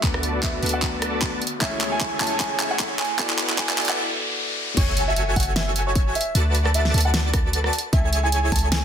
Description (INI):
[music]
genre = future bass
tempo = 152 BPM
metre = 4/4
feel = swing 55% on 16ths, half-time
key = F# minor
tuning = A4 = 440 Hz
[part]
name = dark concert grand piano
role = melody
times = 0.0-8.8 s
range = C#5 to A5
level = -29 LUFS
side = right 1 dB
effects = sidechain pumping, tape echo
[part]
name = bell-like tine electric piano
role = accompaniment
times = 0.0-4.8 s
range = A3 to G#5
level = -32 LUFS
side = left 4 dB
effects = medium stereo tremolo, sidechain pumping, tape echo
[part]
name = ethereal airy pad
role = sustained chords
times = 0.0-4.0 s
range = C#3 to F#4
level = -39 LUFS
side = left 2 dB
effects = none
[part]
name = dense compressed supersaw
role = riff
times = 0.0-8.8 s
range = E4 to A5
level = -28 LUFS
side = right 1 dB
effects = sidechain pumping, low-pass filter
[part]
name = warm 808-style bass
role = bass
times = 0.0-8.8 s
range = E1 to D2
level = -24 LUFS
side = equal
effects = sidechain pumping
[part]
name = electronic kick drum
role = drums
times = 0.0-8.6 s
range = none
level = -24 LUFS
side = equal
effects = none
[part]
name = pop drum kit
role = drums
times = 0.0-8.8 s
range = crash cymbal, handclaps, hi-hat, rim click, snare drum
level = -25 LUFS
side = right 1 dB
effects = soft clipping on snare, high-pass filter on snare, high-pass filter on hats, high-pass filter on cymbals, high-pass filter on room
[part]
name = riser and sub drop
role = sound effects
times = 1.4-6.3 s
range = none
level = -31 LUFS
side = left 1 dB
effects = none
[part]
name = airy dreamy lead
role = arpeggios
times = 4.8-8.8 s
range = G#5 to A5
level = -30 LUFS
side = equal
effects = chorus, sidechain pumping, tape echo
[sound]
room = light reverb, digital ambience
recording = dense, heavily limited modern master, high-pass filter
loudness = -20 LUFS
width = side -8 dB against mid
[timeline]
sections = 0.0-4.8 A section; 4.8-8.8 B section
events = build-up 0.0-4.8; drum fill 0.0-4.0; filter sweep 0.0-4.8; riser 1.4-4.8; break 4.0-4.8; drop 4.8-8.8; impact 4.8-6.4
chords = 0.0 D6; 1.4 Amaj7/C#; 3.0 E9sus4; 4.8 F#m9; 6.2 D6; 7.7 Amaj7/C#